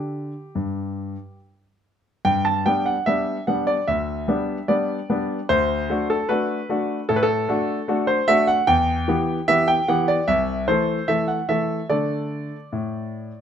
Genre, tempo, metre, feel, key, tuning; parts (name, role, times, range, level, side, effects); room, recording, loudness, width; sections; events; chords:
classical-period piano sonatina; 74 BPM; 4/4; straight; G major; A4 = 440 Hz
clear grand piano; solo; 0.0-13.4 s; C2 to A5; -20 LUFS; equal
moderate large studio reverb, RT60 0.9 s; -19 LUFS; side -8 dB against mid
0.0-2.2 A section; 2.2-13.4 A section
0.0 G5; 2.2 G; 5.5 D; 8.7 Em; 10.3 Am/C; 11.9 D5